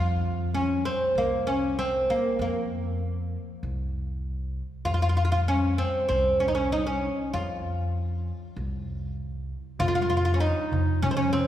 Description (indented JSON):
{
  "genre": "Turkish makam ensemble",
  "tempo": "97 BPM",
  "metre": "4/4",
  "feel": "straight",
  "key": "F makam ussak",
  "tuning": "A4 = 441 Hz",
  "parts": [
    { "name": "oud", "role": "melody", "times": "0.0-11.5 s", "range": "Bb3 to F4", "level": "-26 LUFS", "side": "equal", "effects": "none" },
    { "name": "upright bass", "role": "bass", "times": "0.0-11.5 s", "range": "C2 to F3", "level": "-28 LUFS", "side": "equal", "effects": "none" },
    { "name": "dark clarinet", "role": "second line", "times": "9.8-11.5 s", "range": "Db4 to F4", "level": "-28 LUFS", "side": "left 1 dB", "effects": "none" },
    { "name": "darbuka", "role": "percussion", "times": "9.8-11.5 s", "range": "none", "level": "-31 LUFS", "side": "right 3 dB", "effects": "none" }
  ],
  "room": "wet church reverb, RT60 2.7 s",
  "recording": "recorded in a church or concert hall",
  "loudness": "-24 LUFS",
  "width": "side -11 dB against mid",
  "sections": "0.0-9.8 A section; 9.8-11.5 B section",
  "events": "none",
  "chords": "none",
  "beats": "0.53 1.15 1.77 | 2.39 3.01 3.63 4.25 | 4.86 5.48 6.10 6.72 | 7.33 7.95 8.57 9.19 | 9.80 10.42 11.03"
}